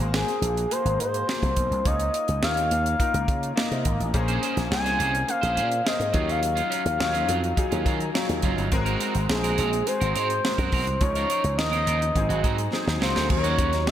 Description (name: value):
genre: polished 1980s jazz-funk pop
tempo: 105 BPM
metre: 4/4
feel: straight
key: unclear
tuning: A4 = 440 Hz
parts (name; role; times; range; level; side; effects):
- clear baby grand piano; accompaniment; 0.0-13.9 s; F3 to Bb5; -30 LUFS; left 3 dB; analog chorus
- slap bass with an envelope filter; bass; 0.0-13.9 s; Gb1 to Eb3; -27 LUFS; equal; none
- expressive synth lead; melody; 0.1-13.9 s; Ab4 to Ab5; -26 LUFS; left 1 dB; chorus
- tight funk drum kit; drums; 0.1-13.9 s; crash cymbal, hi-hat, kick drum, snare drum; -28 LUFS; right 1 dB; gated reverb
- electric guitar at the edge of break-up; riff; 4.1-13.9 s; Gb3 to C5; -30 LUFS; right 6 dB; wide subtle chorus
room: moderate lush hall reverb, RT60 1.8 s, studio ambience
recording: bright 1980s-style digital production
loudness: -22 LUFS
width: side -10 dB against mid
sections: 0.0-13.3 A section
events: grand piano fill 7.6-8.7, 12.2-13.3; drum fill 12.7-13.3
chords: 0.0 Ab9; 1.9 Db69; 4.1 Bbm9; 6.1 Ebm9; 8.7 Ab9; 11.0 Db69; 12.2 Ab7; 13.3 Ebm7